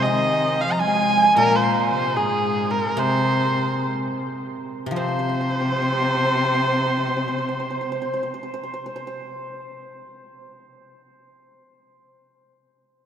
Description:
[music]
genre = chinese traditional, Chinese chamber ensemble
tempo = 53-79 BPM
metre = 2/4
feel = rubato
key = C jue mode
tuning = A4 = 440 Hz
[part]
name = warm erhu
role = melody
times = 0.0-8.2 s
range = Ab4 to Bb5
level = -23 LUFS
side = equal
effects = none
[part]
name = hammered dulcimer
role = second line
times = 0.0-11.7 s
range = Ab4 to Ab5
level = -25 LUFS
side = right 3 dB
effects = none
[part]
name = warm cello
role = second line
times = 0.0-8.2 s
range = Ab2 to Ab3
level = -26 LUFS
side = left 2 dB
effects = none
[part]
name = guzheng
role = accompaniment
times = 0.0-11.5 s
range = Bb2 to C4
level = -28 LUFS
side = left 1 dB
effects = none
[sound]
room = wet cathedral reverb, RT60 5.5 s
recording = in a vast, echoing space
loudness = -19 LUFS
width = side -8 dB against mid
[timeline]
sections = 0.0-5.0 A section; 5.0-9.4 B section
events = slowing down 1.4-5.0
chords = none

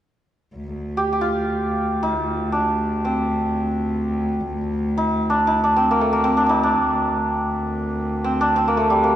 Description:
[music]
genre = Persian modal ensemble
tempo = free time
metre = none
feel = none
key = D dastgah shur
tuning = A4 = 440 Hz
[part]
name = rich cello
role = drone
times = 0.6-9.2 s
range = D2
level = -24 LUFS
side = equal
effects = none
[part]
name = santur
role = melody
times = 1.0-9.2 s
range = G3 to G4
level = -20 LUFS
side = equal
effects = none
[sound]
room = wet recital hall reverb, RT60 1.6 s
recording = dark, warm production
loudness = -18 LUFS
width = side -11 dB against mid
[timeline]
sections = 0.6-9.2 A section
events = none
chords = none

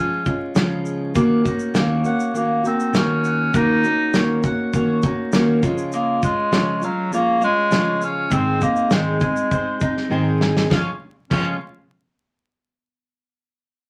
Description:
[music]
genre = acoustic pop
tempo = 100 BPM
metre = 4/4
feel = straight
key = Db major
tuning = A4 = 441 Hz
[part]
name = warm clarinet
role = melody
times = 0.0-11.6 s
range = Gb3 to Eb4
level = -23 LUFS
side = equal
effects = none
[part]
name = fingerpicked steel-string acoustic guitar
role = accompaniment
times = 0.0-11.6 s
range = Ab2 to Ab4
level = -23 LUFS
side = equal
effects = none
[part]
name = natural country drum kit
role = drums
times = 0.3-11.4 s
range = crash cymbal, kick drum, shaker, snare drum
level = -24 LUFS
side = equal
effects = none
[part]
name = mandolin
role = arpeggios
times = 1.2-11.6 s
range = Ab3 to Ab5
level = -32 LUFS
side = equal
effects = none
[sound]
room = wet club ambience, RT60 0.5 s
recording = vinyl crackle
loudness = -20 LUFS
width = mono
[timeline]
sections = 0.0-10.7 A section; 10.7-13.1 B section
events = drum fill 10.1-10.7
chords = 0.0 Db; 1.2 Ebm7; 5.6 Db; 8.3 Ab; 10.7 Db

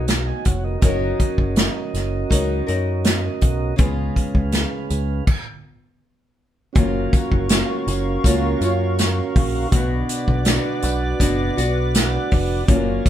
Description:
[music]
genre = indie pop, bedroom pop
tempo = 81 BPM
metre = 4/4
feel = straight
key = F# major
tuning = A4 = 440 Hz
[part]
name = mellow tonewheel organ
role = accompaniment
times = 0.0-13.1 s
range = B3 to A#5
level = -26 LUFS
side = right 4 dB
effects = slow rotary speaker
[part]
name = nylon-string guitar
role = accompaniment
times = 0.0-13.1 s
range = B2 to A#4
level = -26 LUFS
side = left 3 dB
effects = warbly pitch drift
[part]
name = deep dub picked electric bass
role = bass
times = 0.0-13.0 s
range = E#1 to F#2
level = -23 LUFS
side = equal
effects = none
[part]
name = unplugged drum kit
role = drums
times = 0.1-13.1 s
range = crash cymbal, hi-hat, kick drum, snare drum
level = -19 LUFS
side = equal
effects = none
[part]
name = hollow soft pad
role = sustained chords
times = 7.0-13.1 s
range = A#4 to D6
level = -30 LUFS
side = left 1 dB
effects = chorus
[part]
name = tambourine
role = percussion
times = 7.1-13.1 s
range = none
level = -33 LUFS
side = left 6 dB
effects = none
[sound]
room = light reverb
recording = band playing live in one room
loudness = -17 LUFS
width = side -11 dB against mid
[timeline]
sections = 0.0-6.8 A section; 6.8-13.1 B section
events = stop 5.3-6.8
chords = 0.0 Bmaj7; 0.8 F#6; 3.8 C#7; 6.8 F#maj7; 9.7 Bm

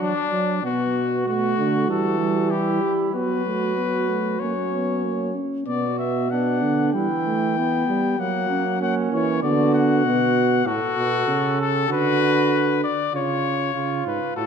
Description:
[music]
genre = classical, imitative canzona for brass ensemble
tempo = 96 BPM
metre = 4/4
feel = straight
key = B minor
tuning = A4 = 440 Hz
[part]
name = clear trumpet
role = melody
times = 0.0-14.5 s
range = D4 to G5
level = -25 LUFS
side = left 8 dB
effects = none
[part]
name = warm flugelhorn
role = second line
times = 0.0-14.5 s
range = A#3 to A4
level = -27 LUFS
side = right 6 dB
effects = none
[part]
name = dark euphonium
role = accompaniment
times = 0.0-10.7 s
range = F#3 to C#4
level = -25 LUFS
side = equal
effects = none
[part]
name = mellow bass trombone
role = bass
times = 0.6-14.5 s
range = G#2 to G3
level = -24 LUFS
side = right 3 dB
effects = none
[sound]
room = wet scoring stage reverb, RT60 1.7 s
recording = nothing above 10.3 kHz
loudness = -19 LUFS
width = side -7 dB against mid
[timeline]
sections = 0.6-5.7 A section; 5.7-14.5 B section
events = none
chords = 0.0 D; 0.6 Bm; 1.9 Emadd9; 3.1 F#sus4; 4.4 F#; 5.7 Bm; 6.9 Em; 8.2 F#; 9.4 Bm/D; 10.7 F#m/A; 11.9 Bm/D; 13.1 C#

